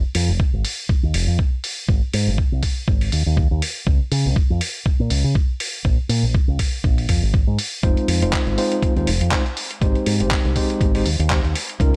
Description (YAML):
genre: nu-disco, nu disco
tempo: 121 BPM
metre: 4/4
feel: swing 56% on 16ths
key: unclear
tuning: A4 = 437 Hz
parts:
  - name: fingered electric bass with an envelope filter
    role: bass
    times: 0.1-11.9 s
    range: F1 to Db3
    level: -22 LUFS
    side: equal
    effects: none
  - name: dusty soul sampler-style drum kit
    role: drums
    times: 0.1-11.9 s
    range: handclaps, hi-hat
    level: -28 LUFS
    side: equal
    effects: none
  - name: electronic kick drum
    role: drums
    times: 0.4-11.9 s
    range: none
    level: -21 LUFS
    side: equal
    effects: none
  - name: tine electric piano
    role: accompaniment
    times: 7.8-12.0 s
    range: Ab3 to C5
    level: -25 LUFS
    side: equal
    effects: analog delay
room: digital ambience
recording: none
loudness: -20 LUFS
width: mono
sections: 0.0-12.0 A section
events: none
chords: 0.0 N.C.; 1.9 Ab5; 3.9 N.C.; 5.9 Bb7(no3); 7.8 Fm7; 9.8 Abmaj7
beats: 0.40 0.89 1.39 | 1.89 2.38 2.88 3.37 | 3.87 4.36 4.86 5.36 | 5.85 6.35 6.84 7.34 | 7.83 8.33 8.83 9.32 | 9.82 10.31 10.81 11.31 | 11.80